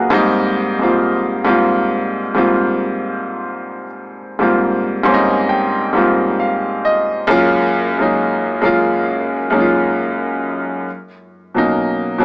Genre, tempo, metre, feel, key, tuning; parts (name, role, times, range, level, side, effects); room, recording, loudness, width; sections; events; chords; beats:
R&B; 67 BPM; 4/4; swing 56% on 16ths; Ab major; A4 = 440 Hz
clear grand piano; solo; 0.0-12.2 s; Gb2 to C6; -14 LUFS; equal
moderate studio reverb, RT60 0.5 s; small speaker sound; -14 LUFS; side -24 dB against mid
0.0-12.2 A section
grand piano fill 4.6-7.3
0.1 Abmaj9; 7.3 Gbmaj9; 10.9 Bmaj9
| 0.11 1.00 1.90 2.79 | 3.69 4.59 5.48 6.38 | 7.27 8.17 9.06 9.96 | 10.86 11.75